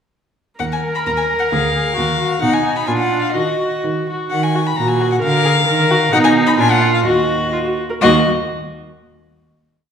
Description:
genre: quick classical-period movement for string quartet.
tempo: 124-134 BPM.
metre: 2/4.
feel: straight.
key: Eb minor.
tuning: A4 = 440 Hz.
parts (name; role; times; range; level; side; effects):
warm violin; melody; 0.6-8.3 s; Eb5 to Cb6; -19 LUFS; left 5 dB; none.
warm viola; accompaniment; 0.6-8.3 s; Bb3 to Bb4; -19 LUFS; right 2 dB; none.
rich cello; bass; 0.6-8.3 s; D2 to Eb3; -20 LUFS; right 3 dB; none.
warm violin; second line; 0.8-8.3 s; D4 to Bb4; -20 LUFS; left 2 dB; none.
room: wet recital hall reverb, RT60 1.4 s.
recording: recorded in a church or concert hall.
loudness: -14 LUFS.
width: side -7 dB against mid.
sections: 0.6-4.3 A section; 4.3-8.0 A section; 8.0-9.0 final chord.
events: none.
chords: 0.6 Eb5; 1.5 Bb7/D; 2.0 Ebm; 2.4 Abm/Cb; 2.9 Bb; 3.3 Ebm; 5.2 Bb/D; 5.7 Eb5; 6.1 Abm/Cb (rootless); 6.6 Bb; 7.1 Ebm.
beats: | 0.60 1.06 | 1.52 1.97 | 2.42 2.88 | 3.35 3.83 | 4.31 4.77 | 5.23 5.68 | 6.13 6.59 | 7.06 7.54 | 8.02.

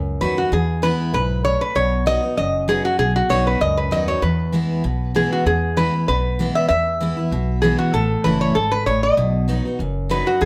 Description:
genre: bluegrass.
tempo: 194 BPM.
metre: 4/4.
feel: swing 53% on 8ths.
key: E major.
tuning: A4 = 440 Hz.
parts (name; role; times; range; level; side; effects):
picked steel-string acoustic guitar; accompaniment; 0.0-10.5 s; E2 to F#4; -25 LUFS; equal; none.
upright bass; bass; 0.0-10.5 s; F#1 to E2; -25 LUFS; equal; none.
lap resonator guitar; melody; 0.2-10.5 s; F#4 to E5; -22 LUFS; equal; plate reverb.
room: moderate studio reverb, RT60 0.6 s.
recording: none.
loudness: -19 LUFS.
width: mono.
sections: 0.0-5.5 A section; 5.5-10.5 A section.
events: none.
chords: 0.0 B; 0.5 E; 1.8 B; 4.2 E; 7.9 A; 9.2 B.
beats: 0.21 | 0.52 0.83 1.14 1.45 | 1.76 2.07 2.38 2.68 | 2.99 3.30 3.61 3.92 | 4.23 4.54 4.85 5.16 | 5.46 5.77 6.08 6.39 | 6.70 7.01 7.32 7.63 | 7.94 8.25 8.55 8.86 | 9.17 9.48 9.79 10.10 | 10.41.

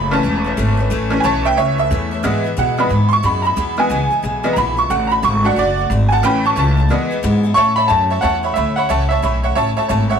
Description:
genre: rockabilly.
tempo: 180 BPM.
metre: 4/4.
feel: swing 63% on 8ths.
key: A major.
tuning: A4 = 440 Hz.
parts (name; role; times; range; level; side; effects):
picked steel-string acoustic guitar; accompaniment; 0.0-10.2 s; E2 to F#4; -24 LUFS; left 4 dB; none.
tack piano; accompaniment; 0.0-10.2 s; E3 to C#6; -17 LUFS; right 2 dB; none.
upright bass; bass; 0.0-10.2 s; E1 to B2; -18 LUFS; equal; none.
bright upright piano; melody; 7.5-9.4 s; E5 to C#6; -16 LUFS; equal; none.
room: moderate small room reverb, RT60 0.5 s.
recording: rough rehearsal-room recording, warm saturation.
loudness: -14 LUFS.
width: side -7 dB against mid.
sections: 0.0-7.6 A section; 7.6-10.2 B section.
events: honky-tonk piano solo 0.0-7.6.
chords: 0.0 A; 2.2 E; 4.9 D; 6.2 A; 6.9 E; 7.6 A.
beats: 0.24 0.57 | 0.90 1.24 1.57 1.90 | 2.23 2.57 2.90 3.23 | 3.57 3.90 4.23 4.57 | 4.90 5.23 5.57 5.90 | 6.23 6.57 6.90 7.23 | 7.57 7.90 8.23 8.56 | 8.90 9.23 9.56 9.90.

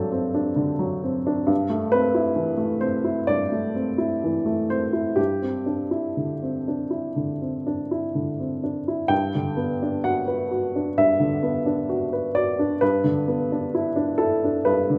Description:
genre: neoclassical minimalist piano.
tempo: 60-68 BPM.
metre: 4/4.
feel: rubato.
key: G major.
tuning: A4 = 440 Hz.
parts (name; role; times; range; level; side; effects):
warm upright piano; solo; 0.0-15.0 s; G2 to G5; -24 LUFS; equal; none.
room: moderate scoring stage reverb, RT60 1.7 s.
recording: none.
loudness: -24 LUFS.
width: mono.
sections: 0.0-9.1 A section; 9.1-15.0 B section.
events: none.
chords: 0.0 D7/G; 1.5 Am/G; 5.2 Cadd9/G; 9.1 Gmaj7; 12.8 Em7/G.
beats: 0.60 | 1.50 2.39 3.29 4.21 | 5.18 6.17 7.17 8.13 | 9.11 10.06 10.99 11.90 | 12.81 13.73 14.64.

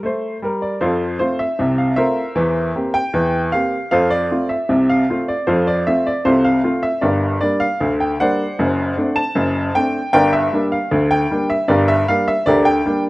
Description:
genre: ragtime piano.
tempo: 77 BPM.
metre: 2/4.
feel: straight.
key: F major.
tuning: A4 = 440 Hz.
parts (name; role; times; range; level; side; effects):
clear upright piano; solo; 0.0-13.1 s; F#1 to A5; -15 LUFS; equal; none.
room: small room reverb.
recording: rough home demo mix, nothing above 10.6 kHz.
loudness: -15 LUFS.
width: side -20 dB against mid.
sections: 0.8-13.1 A section.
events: none.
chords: 0.0 F (rootless); 0.8 F; 2.4 C7/E; 3.9 F; 7.0 Gm; 8.6 D7/F#; 10.1 Gm.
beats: 0.03 | 0.82 1.60 | 2.37 3.15 | 3.93 4.71 | 5.49 6.26 | 7.04 7.81 | 8.59 9.36 | 10.13 10.91 | 11.68 12.46.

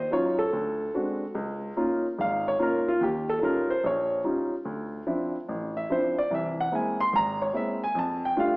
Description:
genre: solo jazz.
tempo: 146 BPM.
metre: 4/4.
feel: swing 66% on 8ths.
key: unclear.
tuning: A4 = 440 Hz.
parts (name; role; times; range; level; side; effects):
warm baby grand piano; solo; 0.0-8.6 s; Ab1 to C6; -24 LUFS; equal; none.
room: wet recital hall reverb, RT60 1.4 s.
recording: recorded in a church or concert hall, AM radio sound.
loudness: -25 LUFS.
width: side -25 dB against mid.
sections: 0.0-8.6 A section.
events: grand piano solo 0.0-8.6.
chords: 0.0 Ebm9; 0.5 D7#11; 1.3 Db69; 3.0 Eb9; 4.7 Dm9; 6.3 Caug7; 7.9 F69.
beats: 0.11 0.52 0.94 | 1.35 1.76 2.17 2.59 | 3.00 3.41 3.83 4.24 | 4.65 5.06 5.47 5.89 | 6.30 6.71 7.12 7.54 | 7.95 8.36.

